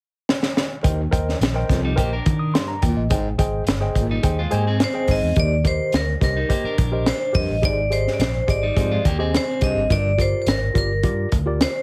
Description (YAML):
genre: uptempo 1960s-style soul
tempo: 106 BPM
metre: 4/4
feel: straight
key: Eb major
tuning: A4 = 440 Hz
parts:
  - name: crunchy breakbeat drum kit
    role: drums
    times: 0.3-11.7 s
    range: hi-hat, kick drum, snare drum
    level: -24 LUFS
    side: equal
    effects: none
  - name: tine electric piano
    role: accompaniment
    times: 0.8-11.7 s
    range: G2 to Eb6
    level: -29 LUFS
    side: equal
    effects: none
  - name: breathy baritone saxophone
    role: riff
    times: 0.8-10.1 s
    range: Eb2 to Bb2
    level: -30 LUFS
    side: equal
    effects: none
  - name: vintage muted fingered electric bass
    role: bass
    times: 0.8-11.6 s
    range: G1 to Eb3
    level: -26 LUFS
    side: equal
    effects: none
  - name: electric guitar at the edge of break-up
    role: riff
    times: 1.8-9.9 s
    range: G3 to Bb4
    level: -31 LUFS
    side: equal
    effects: none
  - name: vibraphone with hard mallets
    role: melody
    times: 4.8-11.8 s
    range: Bb4 to Eb5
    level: -26 LUFS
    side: equal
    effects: none
room: light reverb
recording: heavily compressed radio sound, multiband compression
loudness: -21 LUFS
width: mono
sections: 0.8-5.4 A section; 5.4-11.8 B section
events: drum fill 0.3-0.8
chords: 0.0 N.C.; 0.8 Eb6; 3.1 Abmaj7; 5.4 Eb6; 7.6 Abmaj7; 9.9 Gm7